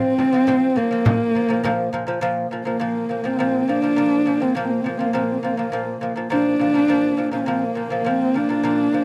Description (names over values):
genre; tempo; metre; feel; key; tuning
mongolian traditional, Mongolian folk; 103 BPM; 4/4; straight; Bb gong mode; A4 = 437 Hz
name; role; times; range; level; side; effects
dark horsehead fiddle; melody; 0.0-9.0 s; Bb3 to D4; -22 LUFS; equal; none
lute; arpeggios; 0.0-9.0 s; Bb2 to C4; -27 LUFS; equal; none
frame drum; percussion; 0.2-2.0 s; none; -26 LUFS; equal; none
dark horsehead fiddle; drone; 2.2-9.0 s; Bb3; -31 LUFS; equal; none
room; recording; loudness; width
little or no reverb; dry, close 1970s-style studio recording; -20 LUFS; mono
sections
0.0-2.2 A section; 2.2-9.0 B section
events
none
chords
0.0 F5; 1.1 Bb5